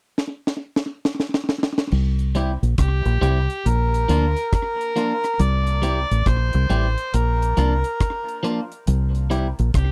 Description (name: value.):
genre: roots reggae.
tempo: 69 BPM.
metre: 4/4.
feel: swing 64% on 16ths.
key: C mixolydian.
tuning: A4 = 440 Hz.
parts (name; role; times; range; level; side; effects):
deep reggae drum kit; drums; 0.2-9.9 s; crash cymbal, hi-hat, kick drum, rim click, snare drum; -25 LUFS; equal; slapback echo.
deep dub fingered electric bass; bass; 1.9-9.9 s; A1 to D2; -22 LUFS; equal; none.
clean electric guitar; accompaniment; 2.4-9.5 s; F3 to G4; -28 LUFS; equal; dub echo.
overdriven harmonica; melody; 2.8-9.9 s; G4 to D5; -27 LUFS; equal; dub echo.
room: little or no reverb.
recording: dry, close 1970s-style studio recording.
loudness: -21 LUFS.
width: mono.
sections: 0.0-1.9 A section; 1.9-9.9 B section.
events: drum fill 0.2-1.9.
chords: 0.0 N.C.; 1.9 C; 3.7 Bb; 5.4 C; 7.1 Bb; 8.9 C.